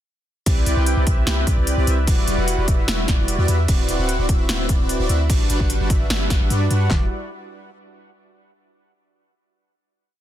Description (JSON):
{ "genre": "future bass", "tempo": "149 BPM", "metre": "4/4", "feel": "half-time", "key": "E minor", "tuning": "A4 = 440 Hz", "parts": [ { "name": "soft supersaw", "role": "riff", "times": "0.5-7.1 s", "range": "G3 to G5", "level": "-24 LUFS", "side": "equal", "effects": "sidechain pumping, tape echo" }, { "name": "warm 808-style bass", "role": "bass", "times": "0.5-7.1 s", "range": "D1 to G2", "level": "-21 LUFS", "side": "equal", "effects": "sidechain pumping" }, { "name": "big-room dance drum kit", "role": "drums", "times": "0.5-6.8 s", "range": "crash cymbal, hi-hat, snare drum", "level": "-26 LUFS", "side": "equal", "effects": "none" }, { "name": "pop drum kit", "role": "drums", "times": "0.5-7.0 s", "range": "handclaps, kick drum, snare drum", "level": "-19 LUFS", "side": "equal", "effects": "none" } ], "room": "digital ambience", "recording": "dense, heavily limited modern master", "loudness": "-17 LUFS", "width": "side -12 dB against mid", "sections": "0.5-6.9 drop; 6.9-8.5 final chord", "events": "drop 0.5-6.9", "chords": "0.5 Cmaj9; 2.1 Em9; 3.7 D13; 5.3 Gmaj7; 6.9 Em9" }